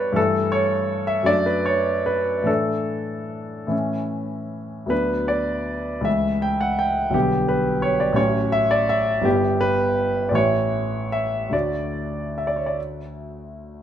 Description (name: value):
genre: classical, romantic character piece for solo piano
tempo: 47-59 BPM (dotted quarters)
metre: 6/8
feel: rubato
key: D major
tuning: A4 = 439 Hz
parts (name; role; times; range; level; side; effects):
- warm grand piano; solo; 0.0-13.8 s; G1 to G5; -20 LUFS; equal; none
room: moderate recital hall reverb, RT60 1.3 s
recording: close, detailed microphones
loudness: -19 LUFS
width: side -10 dB against mid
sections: 0.0-13.8 A section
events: none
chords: 0.2 A7/G; 1.3 D/F#; 2.5 Asus4; 3.7 A; 4.9 Bm/D; 6.1 A/C#; 7.1 G/B; 8.2 F#m/A; 9.3 Em/G; 10.4 A; 11.5 D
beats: | 0.17 1.27 | 2.48 3.72 | 4.91 6.06 | 7.14 8.18 | 9.26 10.35 | 11.53 12.77